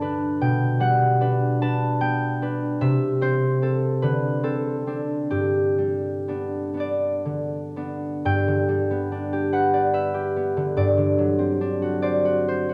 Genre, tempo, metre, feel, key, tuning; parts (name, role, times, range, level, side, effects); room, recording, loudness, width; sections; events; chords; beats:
classical, solo harp piece; 39-51 BPM (dotted quarters); 6/8; rubato; G major; A4 = 441 Hz
concert harp; solo; 0.0-12.7 s; G2 to B5; -23 LUFS; equal
light reverb; close, detailed microphones; -23 LUFS; mono
0.0-8.2 A section; 8.2-12.7 B section
0.4 G/B; 2.8 Am7/C; 4.0 D5; 5.3 G; 10.8 D7/G
| 0.41 1.62 | 2.81 4.03 | 5.32 6.76 | 8.24 9.54 | 10.78 12.05